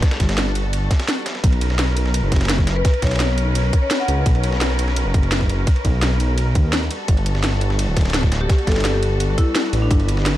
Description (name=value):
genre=liquid drum and bass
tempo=170 BPM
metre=4/4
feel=straight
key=unclear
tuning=A4 = 440 Hz
part: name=clear symphonic string section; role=sustained chords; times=0.0-10.4 s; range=G3 to B4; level=-27 LUFS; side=left 1 dB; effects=vintage 12-bit sampler grit, sidechain pumping
part: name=drum and bass drum kit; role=drums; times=0.0-10.3 s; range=hi-hat, snare drum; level=-24 LUFS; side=equal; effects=none
part: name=dusty soul sampler-style drum kit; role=drums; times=0.0-10.4 s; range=ride cymbal, snare drum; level=-30 LUFS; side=right 1 dB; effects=high-pass filter on cymbals, high-pass filter on snare
part: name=electronic kick drum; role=drums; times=0.0-10.0 s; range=none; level=-17 LUFS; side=equal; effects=none
part: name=dark detuned saw bass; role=bass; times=0.2-10.4 s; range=D1 to D#2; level=-19 LUFS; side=equal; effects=tube saturation
part: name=marimba with medium hard mallets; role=melody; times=2.8-4.3, 8.4-10.3 s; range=D4 to F#5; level=-26 LUFS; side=left 2 dB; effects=ping-pong delay
room=little or no reverb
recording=dark, warm production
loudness=-16 LUFS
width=side -14 dB against mid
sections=0.0-10.4 A section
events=break 1.1-1.4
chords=0.0 Gmaj9; 1.4 Bmaj9; 6.9 Gmaj9